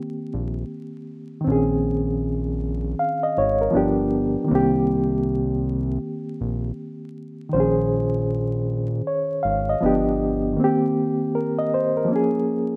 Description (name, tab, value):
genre	hip hop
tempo	79 BPM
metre	4/4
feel	swing 62% on 16ths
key	Bb dorian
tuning	A4 = 440 Hz
part	reed electric piano	accompaniment	0.0-12.8 s	Eb3 to F5	-24 LUFS	equal	fast tremolo, cassette tape, low-pass filter, plate reverb
part	fat analog bass	bass	0.3-10.6 s	G1 to C2	-28 LUFS	equal	none
room	wet small room reverb, RT60 0.6 s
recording	rough home demo mix, vinyl crackle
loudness	-23 LUFS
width	mono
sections	0.0-12.8 A section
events	none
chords	0.0 Cm7; 1.5 Bbm11; 3.7 G7; 4.5 Cm7; 7.5 Bbm11; 9.8 G7; 10.6 Cm7; 12.1 Bbm7